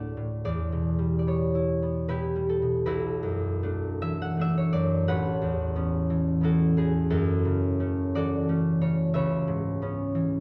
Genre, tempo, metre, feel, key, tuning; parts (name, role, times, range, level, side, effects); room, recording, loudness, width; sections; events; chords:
classical, solo harp piece; 72-93 BPM; 3/4; rubato; B minor; A4 = 440 Hz
concert harp; solo; 0.0-10.4 s; A1 to F#5; -27 LUFS; equal
wet recital hall reverb, RT60 1.3 s; heard from further back in the room; -27 LUFS; mono
0.0-2.9 A section; 2.9-10.4 B section
0.4 Em6; 2.9 Bm11; 5.1 A69; 7.1 F#m7; 9.1 C#m7